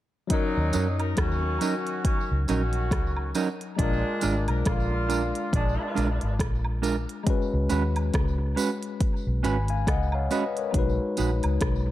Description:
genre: lovers rock reggae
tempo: 69 BPM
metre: 4/4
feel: swing 58% on 16ths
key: Eb minor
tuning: A4 = 438 Hz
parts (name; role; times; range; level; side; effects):
- mellow horn section; second line; 0.3-6.4 s; Bb2 to Bb4; -31 LUFS; equal; none
- tine electric piano; accompaniment; 0.3-11.9 s; Gb3 to Cb6; -31 LUFS; left 4 dB; auto-pan
- minimal click drum kit; drums; 0.3-11.8 s; hi-hat, kick drum, rim click; -27 LUFS; equal; overdrive
- vintage muted fingered electric bass; bass; 0.6-11.9 s; Ab1 to Gb2; -26 LUFS; equal; none
- mellow electric guitar; stabs; 0.7-11.9 s; Gb3 to Cb5; -30 LUFS; right 5 dB; none
- tambourine and woodblock; percussion; 0.7-11.6 s; none; -39 LUFS; right 3 dB; dub echo
room: light reverb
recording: dark, warm production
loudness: -23 LUFS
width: side -14 dB against mid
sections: 0.3-11.9 A section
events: none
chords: 0.3 Ebm7; 3.8 Bb7; 7.3 Db7sus4; 10.7 B6

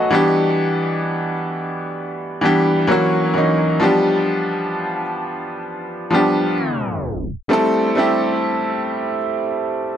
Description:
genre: R&B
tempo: 65 BPM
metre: 4/4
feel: swing 54% on 16ths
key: A minor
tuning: A4 = 441 Hz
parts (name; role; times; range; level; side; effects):
- bright concert grand piano; solo; 0.0-10.0 s; E3 to G#5; -16 LUFS; equal; dub echo
room: light reverb, small room ambience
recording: echo-heavy mix, tape stop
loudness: -16 LUFS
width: side -9 dB against mid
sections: 0.0-7.5 A section; 7.5-10.0 B section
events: tape stop 6.6-7.5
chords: 0.1 Em7; 2.9 F#7; 3.8 G7; 7.5 Am7

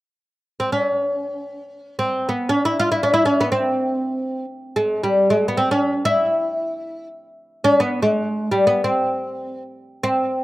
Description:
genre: Persian modal ensemble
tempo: free time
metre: none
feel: none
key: C dastgah chahargah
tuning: A4 = 440 Hz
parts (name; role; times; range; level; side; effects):
- oud; solo; 0.6-10.4 s; G3 to F4; -18 LUFS; equal; slapback echo
room: little or no reverb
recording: recorded outdoors, with no room sound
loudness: -18 LUFS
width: side -17 dB against mid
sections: 0.4-10.4 A section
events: none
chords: none

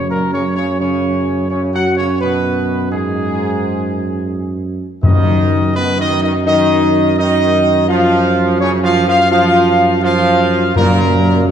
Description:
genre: classical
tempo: 84 BPM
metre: 4/4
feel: straight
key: F# major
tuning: A4 = 442 Hz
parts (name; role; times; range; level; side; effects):
- mellow trumpet section; melody; 0.0-11.5 s; G#4 to F#5; -18 LUFS; right 1 dB; none
- bright trombone section; sustained chords; 0.0-11.5 s; F#2 to F#3; -20 LUFS; right 3 dB; none
- warm French horn section; sustained chords; 0.0-11.5 s; F#3 to F#4; -18 LUFS; left 4 dB; none
- mellow tuba; bass; 0.0-11.5 s; F#2; -17 LUFS; right 3 dB; none
- timpani; percussion; 0.0-0.4, 5.0-6.1, 10.8-11.5 s; F#2; -16 LUFS; left 2 dB; none
room: wet scoring stage reverb, RT60 1.8 s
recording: dark, warm production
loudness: -12 LUFS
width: side -8 dB against mid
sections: 0.0-11.5 A section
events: none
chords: 0.0 F#5

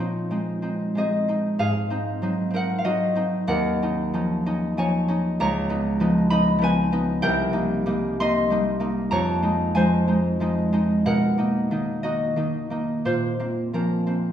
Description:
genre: classical, solo harp piece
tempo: 85-102 BPM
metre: 3/4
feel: rubato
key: Bb minor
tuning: A4 = 439 Hz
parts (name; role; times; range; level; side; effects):
- concert harp; solo; 0.0-14.3 s; C2 to C6; -21 LUFS; equal; none
room: wet recital hall reverb, RT60 1.4 s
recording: heard from further back in the room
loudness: -21 LUFS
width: side -10 dB against mid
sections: 0.0-14.3 A section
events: none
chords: 0.0 Bbm11; 1.6 Ab9; 3.5 Ebm11; 5.4 Db9; 7.2 Cm7; 9.1 Fm7; 11.1 Bmaj7; 13.0 Bbmadd9

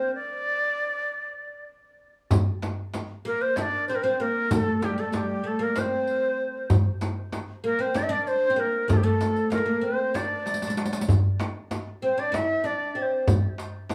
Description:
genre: Turkish makam ensemble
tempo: 192 BPM (eighths)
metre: 7/8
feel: straight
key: D makam ussak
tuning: A4 = 440 Hz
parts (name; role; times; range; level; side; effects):
- breathy bright ney; melody; 0.0-13.3 s; G4 to E5; -28 LUFS; equal; none
- oud; second line; 0.0-13.2 s; G3 to E4-30c; -32 LUFS; equal; none
- darbuka; percussion; 2.3-13.9 s; none; -30 LUFS; equal; none
- frame drum; percussion; 2.3-13.9 s; none; -30 LUFS; equal; none
- riq; percussion; 2.3-13.9 s; none; -38 LUFS; equal; none
room: wet small room reverb, RT60 0.6 s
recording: small room reverb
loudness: -26 LUFS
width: mono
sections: 0.0-2.3 A section; 2.3-13.9 B section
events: stop 0.1-2.3; drum fill 10.5-11.1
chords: none

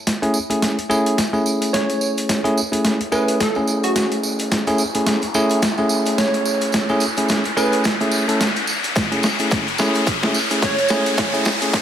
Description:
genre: glitch hop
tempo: 108 BPM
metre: 4/4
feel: swing 57% on 16ths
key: unclear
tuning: A4 = 439 Hz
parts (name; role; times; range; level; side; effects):
- boom bap sampler-style drum kit; drums; 0.1-11.8 s; hi-hat, snare drum; -22 LUFS; equal; overdrive
- tambourine; percussion; 0.1-11.8 s; none; -28 LUFS; right 4 dB; none
- riser; sound effects; 2.1-11.8 s; none; -25 LUFS; left 2 dB; none
- bell-like tine electric piano; stabs; 0.2-11.8 s; A3 to A4; -20 LUFS; equal; vintage 12-bit sampler grit, sidechain pumping, digital delay
- plucky unison lead; melody; 1.7-11.4 s; F#4 to C#5; -23 LUFS; right 2 dB; digital delay
- electronic kick drum; drums; 9.0-11.8 s; none; -25 LUFS; equal; none
room: moderate digital room reverb, RT60 1.1 s, digital ambience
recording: high-pass filter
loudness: -16 LUFS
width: side -10 dB against mid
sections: 0.1-11.8 A section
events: build-up 0.1-11.8; drum fill 0.1-11.8; filter sweep 0.1-11.8; riser 2.1-11.8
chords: 0.1 Amaj7

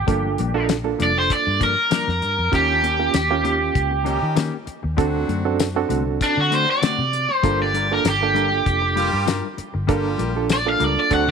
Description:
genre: straight-eighth soul blues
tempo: 98 BPM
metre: 4/4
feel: swing 54% on 16ths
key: G minor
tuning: A4 = 440 Hz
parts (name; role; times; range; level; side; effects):
- raw garage guitar; melody; 0.0-11.3 s; D4 to F#5; -20 LUFS; right 1 dB; overdrive
- vintage muted fingered electric bass; bass; 0.0-11.3 s; F1 to Eb3; -25 LUFS; left 1 dB; none
- barky reed electric piano; accompaniment; 0.1-11.3 s; Bb3 to A4; -24 LUFS; right 10 dB; overdrive, fast tremolo
- mellow electric guitar; stabs; 0.1-11.3 s; G2 to Bb4; -29 LUFS; left 10 dB; warbly pitch drift
- damped 70s drum kit; drums; 0.1-11.3 s; hi-hat, kick drum, snare drum, tambourine; -24 LUFS; left 4 dB; none
- brilliant horn section; sustained chords; 2.5-11.3 s; F#3 to G4; -32 LUFS; left 1 dB; none
room: light reverb, small room reverb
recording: 1960s-style stereo with parts hard left and right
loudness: -18 LUFS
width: side -6 dB against mid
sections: 0.0-11.3 A section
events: overdriven electric guitar solo 0.0-11.3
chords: 0.1 Gm7; 2.5 Eb7; 5.0 D7; 7.4 Gm7

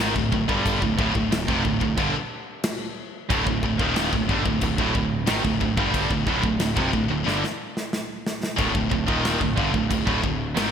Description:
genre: heavy metal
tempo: 91 BPM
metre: 4/4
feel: straight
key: D minor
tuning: A4 = 440 Hz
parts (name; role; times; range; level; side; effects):
- distorted electric guitar; riff; 0.0-10.7 s; D2 to G3; -29 LUFS; left 1 dB; overdrive
- heavy high-gain guitar; riff; 0.0-10.7 s; D2 to G3; -28 LUFS; left 10 dB; distortion
- tight distorted guitar; riff; 0.0-10.7 s; D2 to G3; -27 LUFS; right 8 dB; distortion
- fuzz picked electric bass; bass; 0.0-10.7 s; D1 to G#1; -28 LUFS; equal; overdrive
- modern studio drum kit; drums; 0.2-10.7 s; crash cymbal, kick drum, snare drum; -27 LUFS; left 1 dB; gated reverb
room: moderate lush hall reverb, RT60 2.6 s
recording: bright 1980s-style digital production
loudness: -21 LUFS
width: side -8 dB against mid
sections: 0.0-10.7 A section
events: drum fill 7.3-8.6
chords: 0.0 D5

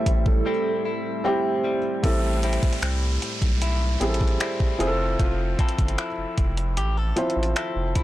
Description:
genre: contemporary R&B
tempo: 76 BPM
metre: 4/4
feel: straight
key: A minor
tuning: A4 = 442 Hz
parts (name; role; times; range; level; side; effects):
- hollow clarinet-like synth lead; melody; 0.0-1.2 s; A4 to E5; -27 LUFS; right 2 dB; chorus, phaser, digital delay
- felt-muted upright piano; accompaniment; 0.0-8.0 s; F3 to C5; -27 LUFS; right 1 dB; none
- glassy FM pad; sustained chords; 0.0-2.0 s; G3 to E4; -34 LUFS; equal; ensemble chorus, built-in reverb
- direct-recorded clean electric guitar; arpeggios; 0.0-8.0 s; A2 to A4; -31 LUFS; left 4 dB; wide subtle chorus, digital delay
- saturated sub bass; bass; 0.1-8.0 s; F1 to C2; -25 LUFS; equal; none
- crisp 8-bit digital drum machine; drums; 0.1-8.0 s; finger snaps, hi-hat, kick drum; -23 LUFS; equal; soft clipping on snare
- downlifter; sound effects; 2.0-8.0 s; none; -35 LUFS; right 2 dB; none
room: little or no reverb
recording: blown-out, overdriven recording, overdrive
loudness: -21 LUFS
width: side -15 dB against mid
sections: 0.0-2.0 A section; 2.0-8.0 B section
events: break 0.5-2.0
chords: 0.0 Am7; 4.8 Fmaj7

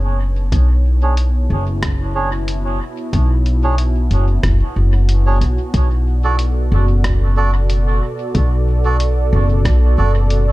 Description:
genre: ambient dub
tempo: 92 BPM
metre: 4/4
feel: swing 55% on 16ths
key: B dorian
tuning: A4 = 438 Hz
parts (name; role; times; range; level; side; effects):
- warm analog pad; sustained chords; 0.0-10.5 s; B2 to D5; -25 LUFS; equal; chorus
- upright bass; bass; 0.0-10.5 s; F#1 to B1; -14 LUFS; equal; tube saturation
- electronic kick drum; drums; 0.5-9.8 s; none; -19 LUFS; equal; none
- lo-fi sampler-style drum kit; drums; 0.5-10.4 s; hi-hat, rim click; -28 LUFS; equal; dub echo
- melodica; stabs; 1.0-10.1 s; D4 to D5; -25 LUFS; right 4 dB; low-pass filter, dub echo
room: digital ambience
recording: dark, warm production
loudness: -13 LUFS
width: side -18 dB against mid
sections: 0.0-10.5 A section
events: fade-in on analog synth pad 0.0-10.5; filter sweep on melodica 0.0-10.5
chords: 0.0 Bm69; 5.7 D

